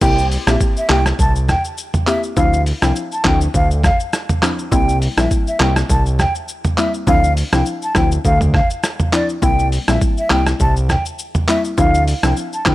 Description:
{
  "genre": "afrobeats",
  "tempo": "102 BPM",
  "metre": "4/4",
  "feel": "swing 55% on 16ths",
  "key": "unclear",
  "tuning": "A4 = 440 Hz",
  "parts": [
    { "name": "mellow hollow jazz flute", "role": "melody", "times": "0.0-12.7 s", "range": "D5 to A5", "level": "-20 LUFS", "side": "equal", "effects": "tape echo" },
    { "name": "mallet-like synth pluck", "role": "accompaniment", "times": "0.0-12.7 s", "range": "F3 to G4", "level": "-21 LUFS", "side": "left 2 dB", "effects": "chorus" },
    { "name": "fat analog bass", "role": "bass", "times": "0.0-12.7 s", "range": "Bb1 to D2", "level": "-17 LUFS", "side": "equal", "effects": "none" },
    { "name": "boom bap sampler-style drum kit", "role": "drums", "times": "0.0-12.7 s", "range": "crash cymbal, handclaps, hi-hat, kick drum, rim click, shaker, toms", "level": "-18 LUFS", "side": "equal", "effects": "none" }
  ],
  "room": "little or no reverb",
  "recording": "none",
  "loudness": "-14 LUFS",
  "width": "side -16 dB against mid",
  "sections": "0.0-12.7 A section",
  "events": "none",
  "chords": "0.0 C7; 2.4 Dm9; 4.7 C7; 7.1 Dm9; 9.4 C7; 11.8 Dm9"
}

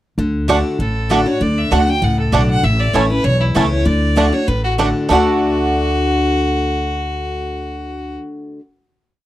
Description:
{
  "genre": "bluegrass",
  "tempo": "195 BPM",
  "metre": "4/4",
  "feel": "straight",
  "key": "D major",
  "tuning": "A4 = 440 Hz",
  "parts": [
    { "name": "picked steel-string acoustic guitar", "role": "accompaniment", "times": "0.2-8.6 s", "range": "E2 to F#4", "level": "-19 LUFS", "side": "left 2 dB", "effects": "none" },
    { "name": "upright bass", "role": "bass", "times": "0.2-8.2 s", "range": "A1 to D2", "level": "-19 LUFS", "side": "equal", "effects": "none" },
    { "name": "bluegrass banjo", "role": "arpeggios", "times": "0.5-8.2 s", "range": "A3 to A4", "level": "-19 LUFS", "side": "right 3 dB", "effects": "none" },
    { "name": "mandolin", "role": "stabs", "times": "0.5-8.6 s", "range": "A3 to A5", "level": "-21 LUFS", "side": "right 5 dB", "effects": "none" },
    { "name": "clear fiddle", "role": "melody", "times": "0.8-8.2 s", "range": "E4 to G5", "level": "-21 LUFS", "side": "equal", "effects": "none" }
  ],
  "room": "light reverb",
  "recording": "dry, close 1970s-style studio recording",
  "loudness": "-14 LUFS",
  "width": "side -14 dB against mid",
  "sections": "0.2-5.1 A section; 5.1-7.6 final chord",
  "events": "none",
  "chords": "0.2 D; 2.6 A; 3.9 D"
}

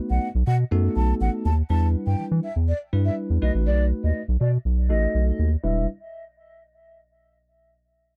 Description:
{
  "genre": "dance-pop",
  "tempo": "122 BPM",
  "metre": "4/4",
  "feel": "straight",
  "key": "E minor",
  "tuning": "A4 = 440 Hz",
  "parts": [
    { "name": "bell-like tine electric piano", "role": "accompaniment", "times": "0.0-5.9 s", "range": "G3 to B4", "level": "-31 LUFS", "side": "equal", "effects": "low-pass filter" },
    { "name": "breathy mellow concert flute", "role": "melody", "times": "0.1-5.9 s", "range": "D5 to A5", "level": "-32 LUFS", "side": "equal", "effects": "low-pass filter, tape echo" },
    { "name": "round analog bass", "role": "bass", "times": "0.1-5.9 s", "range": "E1 to E3", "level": "-23 LUFS", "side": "equal", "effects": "none" }
  ],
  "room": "little or no reverb",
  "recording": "dry, close 1970s-style studio recording",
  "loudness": "-23 LUFS",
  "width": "mono",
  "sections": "0.0-1.7 A section; 1.7-5.6 B section; 5.6-7.6 C section",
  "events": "drop 0.0-1.7; filter sweep 1.7-5.6",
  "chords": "0.0 B7; 1.7 Em7; 3.4 B7; 5.6 Em7"
}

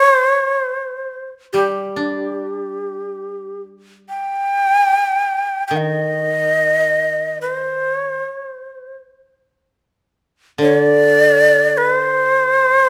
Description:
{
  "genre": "japanese traditional, Japanese chamber music",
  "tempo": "free time",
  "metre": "none",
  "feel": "none",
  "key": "C minor",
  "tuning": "A4 = 440 Hz",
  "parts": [
    { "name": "breathy shakuhachi", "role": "melody", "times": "0.0-12.9 s", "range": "G4 to G5", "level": "-18 LUFS", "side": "equal", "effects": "none" },
    { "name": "koto", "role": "accompaniment", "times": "1.5-12.9 s", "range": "D3 to D4", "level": "-22 LUFS", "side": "equal", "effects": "none" }
  ],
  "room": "moderate recital hall reverb, RT60 1.5 s",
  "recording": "none",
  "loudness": "-17 LUFS",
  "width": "mono",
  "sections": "0.0-12.9 A section",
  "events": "none",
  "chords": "none"
}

